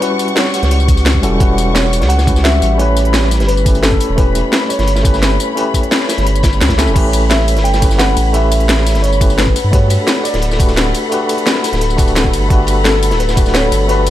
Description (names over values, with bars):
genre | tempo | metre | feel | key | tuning
liquid drum and bass | 173 BPM | 4/4 | straight | unclear | A4 = 442 Hz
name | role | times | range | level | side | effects
dark grand piano | melody | 0.0-14.1 s | A4 to G5 | -21 LUFS | left 1 dB | dub echo
tine electric piano | accompaniment | 0.0-14.1 s | G3 to B4 | -19 LUFS | left 1 dB | fast tremolo, ping-pong delay
rich studio string section | sustained chords | 0.0-14.1 s | G3 to C#6 | -21 LUFS | left 2 dB | sidechain pumping
crunchy breakbeat drum kit | drums | 0.0-14.1 s | hi-hat, snare drum | -23 LUFS | equal | high-pass filter on hats, high-pass filter on snare, high-pass filter on room
drum and bass drum kit | drums | 0.0-14.1 s | crash cymbal, hi-hat, ride cymbal, snare drum, tambourine | -18 LUFS | left 1 dB | none
saturated sub bass | bass | 0.6-14.1 s | D1 to G2 | -14 LUFS | equal | tube saturation
electronic kick drum | drums | 0.9-13.4 s | none | -13 LUFS | equal | none
room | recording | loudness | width
light reverb, small room reverb | dark, warm production | -10 LUFS | side -13 dB against mid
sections
0.0-14.1 A section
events
drum fill 6.8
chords
0.0 Em69; 2.8 A9; 9.6 Gmaj9